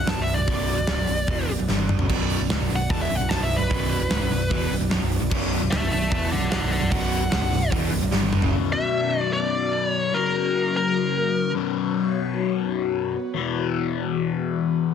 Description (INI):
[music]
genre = hard rock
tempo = 149 BPM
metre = 4/4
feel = straight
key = B minor, B harmonic minor from 8.5 s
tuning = A4 = 441 Hz
[part]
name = bluesy overdriven lead guitar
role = melody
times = 0.0-11.5 s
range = A#4 to A5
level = -26 LUFS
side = left 1 dB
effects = distortion, analog delay
[part]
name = airy breathy pad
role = sustained chords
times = 0.0-14.9 s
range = E3 to D5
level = -34 LUFS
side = right 2 dB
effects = chorus
[part]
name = overdriven semi-hollow guitar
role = riff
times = 0.0-14.9 s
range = B1 to G3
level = -26 LUFS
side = left 9 dB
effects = phaser
[part]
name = overdriven semi-hollow guitar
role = riff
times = 0.0-8.5 s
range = B1 to G3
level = -29 LUFS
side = right 12 dB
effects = none
[part]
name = picked electric bass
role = bass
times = 0.0-8.5 s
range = B0 to G1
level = -26 LUFS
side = right 1 dB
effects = none
[part]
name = gated 80s drum kit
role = drums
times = 0.1-8.5 s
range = crash cymbal, hi-hat, kick drum, snare drum, toms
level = -26 LUFS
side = right 1 dB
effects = none
[part]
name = high-gain distorted guitar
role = riff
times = 2.1-8.5 s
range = B1 to G3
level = -32 LUFS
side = right 2 dB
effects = none
[sound]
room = light reverb, small room ambience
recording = dense, heavily limited modern master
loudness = -21 LUFS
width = side -7 dB against mid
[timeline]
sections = 0.0-8.5 A section; 8.5-14.9 B section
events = lead electric guitar solo 0.0-8.5; drum fill 1.7-2.1, 8.1-8.5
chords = 0.0 Bm; 10.1 F#; 11.5 B5; 13.4 E5